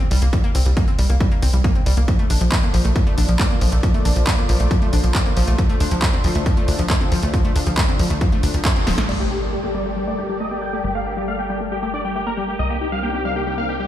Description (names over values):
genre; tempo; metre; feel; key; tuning
uplifting trance; 137 BPM; 4/4; straight; G minor; A4 = 440 Hz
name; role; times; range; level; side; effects
analog pluck; arpeggios; 0.0-13.9 s; F3 to Eb4; -26 LUFS; left 2 dB; chorus, sidechain pumping, ping-pong delay
techno drum kit; drums; 0.0-9.2 s; crash cymbal, handclaps, hi-hat, snare drum; -26 LUFS; equal; overdrive, studio reverb
tight sequencer bass; bass; 0.1-13.9 s; D1 to D2; -20 LUFS; equal; sidechain pumping
electronic kick drum; drums; 0.3-8.7 s; none; -18 LUFS; equal; overdrive, studio reverb
lush unison pad; sustained chords; 2.1-13.9 s; C3 to D5; -28 LUFS; equal; chorus, sidechain pumping
big supersaw lead; melody; 9.1-13.9 s; G4 to G5; -24 LUFS; left 1 dB; phaser, sidechain pumping, low-pass filter, ping-pong delay
impact; sound effects; 9.1-10.8 s; none; -29 LUFS; equal; none
room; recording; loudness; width
light reverb; played on a big sound system in a bare room, stone room reverb; -17 LUFS; side -12 dB against mid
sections
0.0-9.1 A section; 9.1-13.9 B section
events
band accent 8.7; drum fill 8.9; impact 9.1-10.8; filter sweep on supersaw synth 9.1-13.9; filter sweep on synth arpeggio sound 9.1-13.9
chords
0.0 C5; 2.1 Bbmaj7; 5.6 Dm7; 9.1 Gmadd9; 12.6 Cm7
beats
| 0.33 0.77 1.21 1.64 | 2.08 2.52 2.96 3.40 | 3.83 4.27 4.71 5.15 | 5.58 6.02 6.46 6.90 | 7.34 7.78 8.21 8.65 | 9.09 9.53 9.96 10.40 | 10.84 11.28 11.72 12.15 | 12.59 13.03 13.47